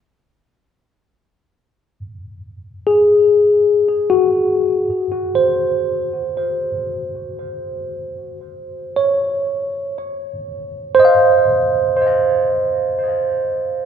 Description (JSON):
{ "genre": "ambient", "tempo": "59 BPM", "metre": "3/4", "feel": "straight", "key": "unclear", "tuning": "A4 = 440 Hz", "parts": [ { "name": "tine electric piano", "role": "solo", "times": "2.9-13.9 s", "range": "Gb4 to F5", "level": "-15 LUFS", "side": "equal", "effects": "slow stereo tremolo, analog delay" } ], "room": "wet spring reverb, RT60 2.4 s", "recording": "echo-heavy mix", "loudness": "-14 LUFS", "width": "side -8 dB against mid", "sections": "0.0-4.9 A section; 4.9-13.9 B section", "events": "none", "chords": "0.0 N.C.; 1.8 Gbsus2/Ab; 4.9 N.C.; 11.0 F5", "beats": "0.79 | 1.81 2.83 3.84 | 4.86 5.88 6.89 | 7.91 8.93 9.94 | 10.96 11.98 12.99" }